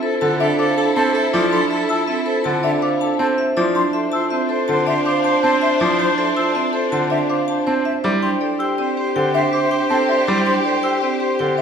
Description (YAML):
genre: classical, minimalist pattern music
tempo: 161 BPM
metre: 6/4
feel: straight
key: unclear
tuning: A4 = 440 Hz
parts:
  - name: vibraphone with hard mallets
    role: melody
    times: 0.0-11.6 s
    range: G4 to A5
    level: -24 LUFS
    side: left 7 dB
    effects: none
  - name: clear soprano saxophone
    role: second line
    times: 0.0-11.6 s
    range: A4 to C5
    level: -23 LUFS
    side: right 1 dB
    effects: none
  - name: clear studio string section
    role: sustained chords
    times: 0.0-11.6 s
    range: D4 to C5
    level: -25 LUFS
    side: left 2 dB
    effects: none
  - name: marimba with medium hard mallets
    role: arpeggios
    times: 0.0-11.6 s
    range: C4 to C5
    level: -21 LUFS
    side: right 5 dB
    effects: none
  - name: bright grand piano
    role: accompaniment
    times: 0.2-11.6 s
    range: D3 to C4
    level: -23 LUFS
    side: equal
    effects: none
  - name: mellow hollow concert flute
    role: arpeggios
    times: 0.4-11.6 s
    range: E5 to E6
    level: -25 LUFS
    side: left 2 dB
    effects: none
room: wet recital hall reverb, RT60 1.3 s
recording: recorded in a church or concert hall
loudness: -16 LUFS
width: side -7 dB against mid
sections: 0.0-11.6 A section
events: none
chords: 0.0 Dm7; 8.0 Am7